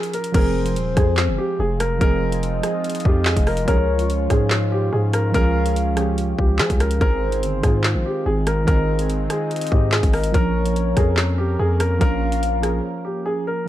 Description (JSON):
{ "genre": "hip hop, drill", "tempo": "144 BPM", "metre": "4/4", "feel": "half-time", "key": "F minor", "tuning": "A4 = 440 Hz", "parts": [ { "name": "dark concert grand piano", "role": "melody", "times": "0.0-13.6 s", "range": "G4 to Bb4", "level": "-25 LUFS", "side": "equal", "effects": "low-pass filter, ping-pong delay" }, { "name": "soft electric-piano-like synth keys", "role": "accompaniment", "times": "0.0-13.7 s", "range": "Eb3 to Bb4", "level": "-26 LUFS", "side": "right 4 dB", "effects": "chorus, low-pass filter" }, { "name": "drill drum kit", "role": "drums", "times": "0.0-12.7 s", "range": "crash cymbal, handclaps, hi-hat, kick drum, rim click, snare drum", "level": "-21 LUFS", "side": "equal", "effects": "none" }, { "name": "soft octave-layered synth lead", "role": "second line", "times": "0.3-12.8 s", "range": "C5 to F5", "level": "-28 LUFS", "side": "left 3 dB", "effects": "chorus, phaser, ping-pong delay" }, { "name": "sweeping resonant pad", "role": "sustained chords", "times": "0.3-13.6 s", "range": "Eb3 to Bb4", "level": "-33 LUFS", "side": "left 2 dB", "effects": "chorus, low-pass filter" }, { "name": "growling 808-style bass", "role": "bass", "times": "0.3-12.8 s", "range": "Eb1 to F3", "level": "-22 LUFS", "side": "equal", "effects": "none" } ], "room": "little or no reverb", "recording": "dark, warm production", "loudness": "-17 LUFS", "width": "side -13 dB against mid", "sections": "0.3-13.7 A section", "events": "break 0.0-0.3, 12.8-13.7", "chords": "0.3 Fm; 3.7 Db; 7.0 Ab; 10.3 Bbm", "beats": "| 0.34 0.76 1.18 1.59 | 2.01 2.43 2.84 3.26 | 3.68 4.09 4.51 4.93 | 5.34 5.76 6.18 6.59 | 7.01 7.43 7.84 8.26 | 8.68 9.09 9.51 9.93 | 10.34 10.76 11.18 11.59 | 12.01 12.43 12.84 13.26 | 13.68" }